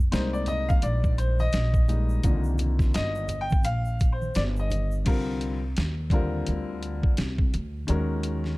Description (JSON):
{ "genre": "hip hop, jazz-hop", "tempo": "85 BPM", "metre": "4/4", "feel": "swing 60% on 16ths", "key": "C minor", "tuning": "A4 = 440 Hz", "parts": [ { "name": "upright bass", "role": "bass", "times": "0.0-8.6 s", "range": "G1 to Eb2", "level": "-27 LUFS", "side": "equal", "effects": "none" }, { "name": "warm upright piano", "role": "accompaniment", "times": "0.1-8.6 s", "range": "D3 to G5", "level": "-30 LUFS", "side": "left 2 dB", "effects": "none" }, { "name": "boom bap sampler-style drum kit", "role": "drums", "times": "0.1-8.5 s", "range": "crash cymbal, hi-hat, kick drum, snare drum", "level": "-24 LUFS", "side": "equal", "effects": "none" }, { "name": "egg shaker and congas", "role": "percussion", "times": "0.1-5.0 s", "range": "none", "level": "-39 LUFS", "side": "right 3 dB", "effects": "none" } ], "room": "small room reverb", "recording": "dark, warm production", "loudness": "-23 LUFS", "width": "side -21 dB against mid", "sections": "0.0-5.1 A section; 5.1-8.6 B section", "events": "upright piano solo 0.0-5.1", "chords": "0.0 Fm11 (rootless); 2.2 Cm11; 7.9 Ebm7" }